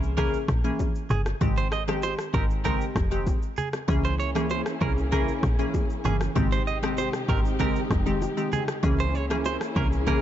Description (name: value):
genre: afrobeats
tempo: 97 BPM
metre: 4/4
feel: straight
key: unclear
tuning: A4 = 440 Hz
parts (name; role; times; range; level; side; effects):
- glassy wavetable pluck; accompaniment; 0.0-10.2 s; Eb3 to Ab4; -29 LUFS; left 1 dB; chorus
- woody log drum bass; bass; 0.0-10.2 s; F1 to Db2; -27 LUFS; equal; none
- afro-pop drum kit; drums; 0.0-10.2 s; kick drum, rim click, shaker; -28 LUFS; equal; none
- direct-recorded clean electric guitar; riff; 0.2-10.2 s; Ab4 to Eb5; -32 LUFS; right 8 dB; tape echo
- congas and bongos; percussion; 0.2-10.2 s; none; -35 LUFS; left 2 dB; none
- dark symphonic string section; sustained chords; 3.9-10.2 s; C3 to Ab4; -34 LUFS; left 1 dB; none
room: light reverb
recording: dark, warm production, nothing above 7.6 kHz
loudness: -23 LUFS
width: side -11 dB against mid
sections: 0.0-3.9 A section; 3.9-10.2 B section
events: none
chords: 0.0 Dbm6; 1.4 Abmaj7; 3.9 Dbm6; 6.4 Abmaj7; 8.8 Dbm6